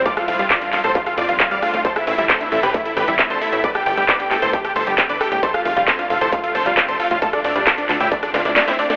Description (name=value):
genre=uplifting trance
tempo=134 BPM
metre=4/4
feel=straight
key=unclear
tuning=A4 = 440 Hz
part: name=plucky analog bass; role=bass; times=0.0-8.5 s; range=F1 to F2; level=-30 LUFS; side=equal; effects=sidechain pumping
part: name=big supersaw lead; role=melody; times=0.1-9.0 s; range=C4 to F5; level=-23 LUFS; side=equal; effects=sidechain pumping, tape echo
part: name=plucky unison lead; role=second line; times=0.1-9.0 s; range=D5 to F6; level=-27 LUFS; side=equal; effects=sidechain pumping
part: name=unison pluck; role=arpeggios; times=0.1-9.0 s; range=A2 to A4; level=-29 LUFS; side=equal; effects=sidechain pumping, tape echo
part: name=electronic kick drum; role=drums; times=0.1-8.2 s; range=none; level=-28 LUFS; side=equal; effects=distortion
part: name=techno drum kit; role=drums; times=0.1-9.0 s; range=handclaps, hi-hat, rim click, snare drum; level=-23 LUFS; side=equal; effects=none
room=moderate lush hall reverb, RT60 2.3 s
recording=telephone sound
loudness=-18 LUFS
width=mono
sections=0.0-9.0 A section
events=drum fill 8.3-9.0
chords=0.1 F6; 1.8 Amadd9; 3.6 Gsus2; 5.4 F6; 7.2 Dm7